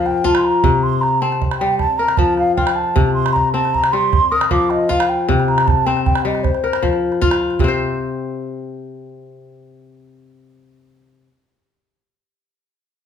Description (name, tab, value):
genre	west african traditional, West African string and xylophone music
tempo	103 BPM (dotted quarters)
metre	12/8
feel	straight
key	unclear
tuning	A4 = 442 Hz
part	mellow hollow wooden flute	melody	0.0-7.2 s	C5 to Eb6	-18 LUFS	right 1 dB	none
part	kora	arpeggios	0.0-11.4 s	C3 to C5	-18 LUFS	left 4 dB	none
part	calabash	percussion	0.1-7.8 s	none	-20 LUFS	right 4 dB	none
room	moderate large studio reverb, RT60 0.8 s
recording	band playing live in one room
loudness	-14 LUFS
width	side -8 dB against mid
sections	0.0-7.6 A section; 7.6-9.9 B section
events	none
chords	0.0 Fsus4; 0.6 C5; 1.8 Fadd11; 3.0 C5; 4.1 F7sus4; 5.3 C5; 6.4 F5; 7.6 N.C.